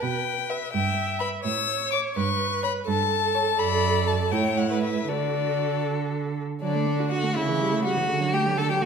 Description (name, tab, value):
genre	quick classical-period movement for string quartet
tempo	83 BPM (dotted quarters)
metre	6/8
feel	rubato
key	D major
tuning	A4 = 439 Hz
part	warm violin	melody	0.0-8.9 s	D5 to E6	-27 LUFS	left 9 dB	none
part	rich viola	accompaniment	0.0-8.9 s	C#3 to E5	-29 LUFS	right 5 dB	none
part	warm cello	bass	0.0-8.9 s	F#2 to D3	-28 LUFS	right 6 dB	none
part	clear violin	second line	0.5-8.9 s	D4 to D5	-29 LUFS	left 2 dB	none
room	wet recital hall reverb, RT60 1.6 s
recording	none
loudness	-22 LUFS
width	side -6 dB against mid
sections	0.0-6.6 A section; 6.6-8.9 B section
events	none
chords	0.0 Em; 0.7 Em/G; 1.4 A; 2.2 A7/G; 3.6 D/F#; 4.3 A; 5.1 D; 7.4 A7/C#; 8.1 D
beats	0.02 | 0.74 1.45 | 2.17 2.88 | 3.59 4.32 | 5.08 5.85 | 6.62 7.36 | 8.09 8.81